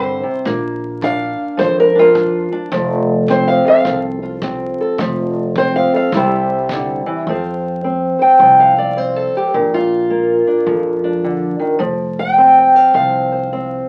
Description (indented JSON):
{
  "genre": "acoustic country blues, solo or duo",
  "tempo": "106 BPM",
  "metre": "4/4",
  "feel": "swing 63% on 8ths",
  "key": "F major",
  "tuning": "A4 = 440 Hz",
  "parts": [
    { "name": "fingerpicked old ladder-braced acoustic guitar", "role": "melody", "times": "0.0-13.9 s", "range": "Bb2 to G5", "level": "-15 LUFS", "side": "equal", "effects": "none" },
    { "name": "upright bass", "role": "bass", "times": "0.0-13.8 s", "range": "F1 to G2", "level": "-25 LUFS", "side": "equal", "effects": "none" },
    { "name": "kick drum", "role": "drums", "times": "0.5-6.9 s", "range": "none", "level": "-32 LUFS", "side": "equal", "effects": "none" }
  ],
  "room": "wet studio reverb, RT60 0.5 s",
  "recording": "very old 78 rpm record, vinyl crackle",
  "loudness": "-15 LUFS",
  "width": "mono",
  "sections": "0.0-7.3 A section; 7.3-13.9 B section",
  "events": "steel-string acoustic guitar solo 0.0-7.3",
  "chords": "0.5 Bb; 2.7 F; 6.1 C; 7.3 F5; 9.5 Bb; 11.8 F5",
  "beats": "| 0.45 1.02 1.59 2.15 | 2.72 3.29 3.86 4.42 | 4.99 5.56 6.13 6.69 | 7.26 7.83 8.40 8.96 | 9.53 10.10 10.67 11.24 | 11.81 12.37 12.94 13.51"
}